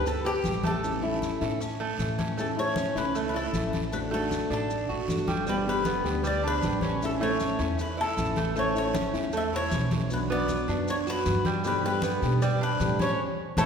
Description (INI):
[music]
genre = latin, Cuban son and guajira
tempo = 155 BPM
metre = 4/4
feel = straight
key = unclear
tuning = A4 = 440 Hz
[part]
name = Cuban tres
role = melody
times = 0.0-13.7 s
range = E4 to E5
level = -30 LUFS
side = left 2 dB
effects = none
[part]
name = nylon-string guitar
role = accompaniment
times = 0.0-13.7 s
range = B2 to G4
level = -32 LUFS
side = left 2 dB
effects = none
[part]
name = Cuban tres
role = arpeggios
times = 0.0-13.7 s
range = G3 to B4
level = -31 LUFS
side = right 4 dB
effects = none
[part]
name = upright bass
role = bass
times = 0.0-13.7 s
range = G1 to B2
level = -32 LUFS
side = equal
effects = none
[part]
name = congas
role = percussion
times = 0.1-13.7 s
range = none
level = -34 LUFS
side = left 1 dB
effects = none
[part]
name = guiro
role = percussion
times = 0.1-13.7 s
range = none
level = -43 LUFS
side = right 4 dB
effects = none
[part]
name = maracas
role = percussion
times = 0.1-13.7 s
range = none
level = -47 LUFS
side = left 4 dB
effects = none
[sound]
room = wet concert hall reverb, RT60 2.0 s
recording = recorded in a church or concert hall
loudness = -25 LUFS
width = side -6 dB against mid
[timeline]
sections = 0.0-2.4 A section; 2.4-13.7 B section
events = band accent 13.2-13.7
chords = 0.0 G; 0.8 A; 3.9 D/A; 5.5 G; 7.0 A; 10.1 Bm; 11.7 G